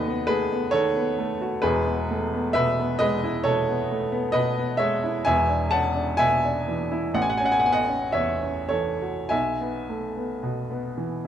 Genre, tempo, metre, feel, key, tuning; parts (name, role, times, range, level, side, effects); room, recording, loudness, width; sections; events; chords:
classical, romantic nocturne for solo piano; 49-68 BPM; 4/4; rubato; E major; A4 = 440 Hz
warm upright piano; solo; 0.0-11.3 s; D#1 to A5; -22 LUFS; equal
moderate recital hall reverb, RT60 1.5 s; close, detailed microphones; -22 LUFS; side -9 dB against mid
0.0-11.3 A section
0.0 B7/D#; 1.6 E; 5.3 E7; 7.2 A6; 9.3 E/B